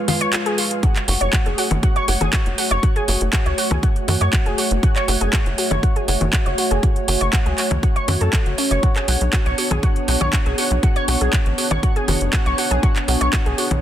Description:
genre	melodic techno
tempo	120 BPM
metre	4/4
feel	straight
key	F# harmonic minor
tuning	A4 = 440 Hz
part	dark analog pad	sustained chords	0.0-13.8 s	G#3 to C#5	-26 LUFS	right 1 dB	chorus, sidechain pumping
part	warbly dusty pluck	arpeggios	0.1-13.6 s	C#4 to C#6	-23 LUFS	equal	analog chorus, sidechain pumping, ping-pong delay
part	house drum kit	drums	0.1-13.8 s	congas, handclaps, hi-hat	-22 LUFS	equal	none
part	electronic kick drum	drums	0.8-13.4 s	none	-18 LUFS	equal	none
part	tight sequencer bass	bass	1.1-13.8 s	F#1 to F#2	-20 LUFS	equal	sidechain pumping
room	digital ambience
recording	dense, heavily limited modern master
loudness	-16 LUFS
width	side -11 dB against mid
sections	0.0-13.8 A section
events	break 0.0-0.8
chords	0.0 C#; 0.8 F#m; 8.8 Bmadd9

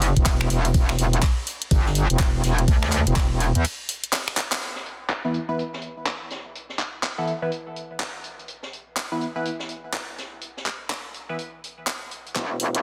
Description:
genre	bass house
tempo	124 BPM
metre	4/4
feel	swing 61% on 16ths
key	E minor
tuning	A4 = 440 Hz
part	metallic wobble bass	bass	0.0-3.6, 12.4-12.8 s	E1 to E2	-23 LUFS	equal	chorus, overdrive, sidechain pumping, high-pass filter
part	garage drum kit	drums	0.0-12.8 s	finger snaps, handclaps, hi-hat, ride cymbal	-30 LUFS	equal	overdrive, high-pass filter on hats, low-pass filter on hats, high-pass filter on snare, low-pass filter on snare, high-pass filter on cymbals, low-pass filter on cymbals
part	open jazz drum kit	drums	0.0-12.4 s	hi-hat, snare drum	-40 LUFS	equal	sidechain pumping on hats, high-pass filter on hats, low-pass filter on hats, soft clipping on snare, high-pass filter on snare, low-pass filter on snare, high-pass filter on room, low-pass filter on room
part	electronic kick drum	drums	0.2-3.3, 12.4-12.5 s	none	-22 LUFS	equal	high-pass filter on kick
part	band-passed chord stab	stabs	5.2-11.4 s	E3 to B4	-32 LUFS	equal	phaser, sidechain pumping, digital delay
room	light reverb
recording	dense, heavily limited modern master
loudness	-25 LUFS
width	mono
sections	0.0-4.6 A section; 4.6-12.4 B section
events	drop 0.0-4.6; break 3.6-4.6; drum fill 4.4, 12.4-12.8; band accent 4.5; filter sweep on synth stab 4.6-12.4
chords	0.0 N.C.; 4.6 E5

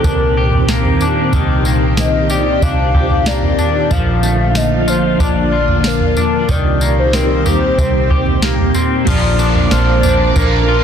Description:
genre	dream pop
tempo	93 BPM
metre	4/4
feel	straight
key	C minor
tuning	A4 = 440 Hz
part	hollow clarinet-like synth lead	melody	0.0-10.8 s	Bb4 to F5	-19 LUFS	left 2 dB	chorus, digital delay
part	phased string machine	sustained chords	0.0-10.8 s	Bb2 to D6	-18 LUFS	equal	ensemble chorus, phaser
part	electric guitar at the edge of break-up	arpeggios	0.0-10.8 s	Eb3 to G4	-19 LUFS	left 3 dB	analog chorus, digital delay
part	vintage muted fingered electric bass	bass	0.0-10.8 s	Bb1 to C2	-17 LUFS	equal	none
part	soft vintage rhythm box	drums	0.0-10.5 s	crash cymbal, kick drum, snare drum, tambourine, toms	-17 LUFS	right 1 dB	none
part	crunchy overdriven guitar	accompaniment	9.0-10.8 s	Bb2 to Bb4	-19 LUFS	right 6 dB	harmonic tremolo, analog chorus
room	light reverb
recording	dense, heavily limited modern master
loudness	-11 LUFS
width	side -8 dB against mid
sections	0.0-9.1 A section; 9.1-10.8 B section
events	none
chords	0.0 Cm9; 3.9 Bbmaj7; 6.5 Cm7; 9.1 Bb

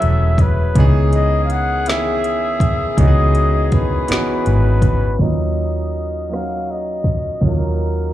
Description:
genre	slow six-eight R&B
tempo	54 BPM (dotted quarters)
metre	6/8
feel	straight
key	Eb phrygian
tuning	A4 = 440 Hz
part	breathy flugelhorn	melody	0.0-8.1 s	Bb4 to Gb5	-22 LUFS	left 1 dB	slapback echo
part	clear concert grand piano	accompaniment	0.0-8.1 s	Eb3 to Cb5	-23 LUFS	right 2 dB	slapback echo
part	warm horn section	stabs	0.0-4.8 s	Eb3 to A4	-26 LUFS	left 8 dB	slapback echo
part	vintage muted fingered electric bass	bass	0.0-8.1 s	Fb1 to Eb2	-16 LUFS	equal	none
part	smooth R&B drum kit	drums	0.0-8.0 s	crash cymbal, hi-hat, kick drum, rim click, snare drum	-17 LUFS	equal	none
room	small room ambience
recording	live gig heard through the venue's PA, club reverb, low-pass filter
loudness	-14 LUFS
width	side -13 dB against mid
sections	0.0-5.2 A section; 5.2-8.1 B section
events	none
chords	0.0 Gbm9; 0.8 Dbm9; 5.2 Ebm9

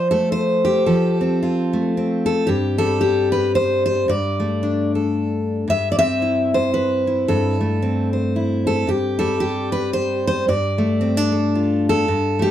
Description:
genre	folk, solo fingerstyle acoustic guitar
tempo	112 BPM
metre	3/4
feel	swing 58% on 8ths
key	unclear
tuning	A4 = 440 Hz
part	fingerpicked steel-string acoustic guitar	solo	0.0-12.5 s	G2 to E5	-17 LUFS	equal	slapback echo
room	light reverb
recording	dry, close 1970s-style studio recording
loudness	-17 LUFS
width	side -11 dB against mid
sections	0.0-2.5 A section; 2.5-12.5 B section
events	none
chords	0.0 F; 2.5 C5/G; 4.1 D5/G; 5.7 Am7/G; 8.9 C5/G; 10.5 Dm/G

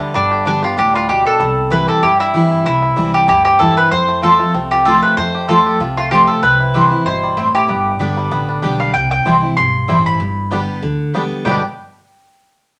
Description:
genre	bluegrass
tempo	191 BPM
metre	4/4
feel	swing 54% on 8ths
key	G mixolydian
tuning	A4 = 440 Hz
part	bluegrass banjo	melody	0.0-11.6 s	D3 to G4	-24 LUFS	equal	none
part	picked steel-string acoustic guitar	accompaniment	0.0-11.6 s	F2 to G4	-21 LUFS	equal	none
part	upright bass	bass	0.1-11.6 s	G1 to G2	-27 LUFS	equal	none
part	mandolin	melody	0.2-11.6 s	D4 to C6	-17 LUFS	equal	none
part	mandolin	stabs	4.2-11.6 s	B3 to A5	-17 LUFS	equal	none
room	wet studio reverb, RT60 0.7 s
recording	none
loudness	-14 LUFS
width	mono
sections	0.0-8.9 A section; 8.9-11.5 B section; 11.5-12.7 C section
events	none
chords	0.0 G; 1.4 C; 3.9 F; 6.4 C; 7.7 G; 8.9 C; 10.2 G

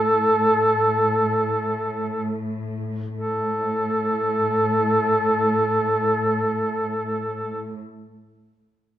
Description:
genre	caucasian folk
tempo	free time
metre	none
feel	none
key	unclear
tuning	A4 = 439 Hz
part	warm duduk	melody	0.0-7.7 s	A4	-20 LUFS	equal	none
part	warm symphonic cello section	drone	0.0-7.8 s	A2	-27 LUFS	equal	none
room	moderate recital hall reverb, RT60 1.5 s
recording	minimal, uncompressed stereo recording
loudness	-20 LUFS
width	side -12 dB against mid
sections	0.0-3.2 A section; 3.2-7.7 B section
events	slowing down 0.0-3.2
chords	none

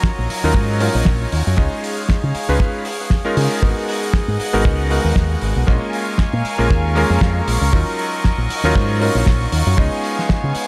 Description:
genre	nu-disco, nu disco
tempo	117 BPM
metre	4/4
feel	swing 55% on 16ths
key	unclear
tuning	A4 = 440 Hz
part	bright electric grand piano	accompaniment	0.0-10.7 s	F#3 to D#5	-24 LUFS	equal	sidechain pumping, tape echo
part	rich chamber string section	sustained chords	0.0-10.7 s	F#3 to C#6	-28 LUFS	equal	sidechain pumping
part	damped 70s drum kit	drums	0.0-10.7 s	hi-hat, snare drum	-28 LUFS	equal	tape echo
part	kick drum	drums	0.0-10.4 s	none	-19 LUFS	equal	none
part	fingered electric bass with an envelope filter	bass	0.2-10.6 s	G#1 to C#3	-21 LUFS	equal	sidechain pumping
room	light reverb, small room ambience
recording	echo-heavy mix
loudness	-18 LUFS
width	mono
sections	0.0-10.7 A section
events	none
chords	0.0 D#m7; 1.6 C#7; 3.6 G#m7; 5.7 A#m7; 7.7 D#m7; 9.8 C#7

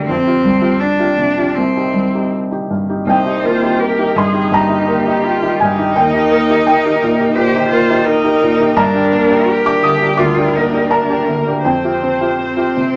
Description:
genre	neoclassical piano and strings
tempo	84 BPM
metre	4/4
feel	rubato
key	C minor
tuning	A4 = 440 Hz
part	rich cello	second line	0.0-13.0 s	Bb3 to G4	-20 LUFS	equal	none
part	felt-muted upright piano	accompaniment	0.0-13.0 s	C2 to Eb6	-17 LUFS	equal	none
part	rich viola	accompaniment	3.1-13.0 s	G4 to C5	-20 LUFS	equal	none
room	wet studio reverb, RT60 0.6 s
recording	none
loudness	-14 LUFS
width	mono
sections	0.0-3.1 A section; 3.1-13.0 A section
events	none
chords	0.1 Fsus2; 1.6 Cm; 3.1 Cm7; 6.0 Eb; 8.8 Gm; 11.6 Fsus2

